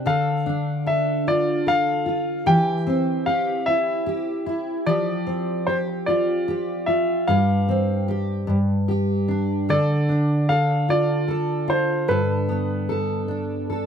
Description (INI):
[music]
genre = pop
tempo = 50 BPM (dotted quarters)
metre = 6/8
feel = straight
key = unclear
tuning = A4 = 442 Hz
[part]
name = fingerpicked steel-string acoustic guitar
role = accompaniment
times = 0.0-13.9 s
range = G2 to A4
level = -21 LUFS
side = equal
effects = double-tracked left and right
[part]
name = bright concert grand piano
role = melody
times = 0.1-13.0 s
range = B4 to G5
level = -23 LUFS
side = left 2 dB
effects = slapback echo
[sound]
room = little or no reverb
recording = recorded outdoors, with no room sound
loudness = -20 LUFS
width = side -7 dB against mid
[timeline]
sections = 0.0-13.9 A section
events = none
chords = 0.0 Dm; 2.5 C/E; 4.9 Fsus2; 7.3 G7sus4; 8.5 G5; 9.7 Dm; 12.1 Gadd9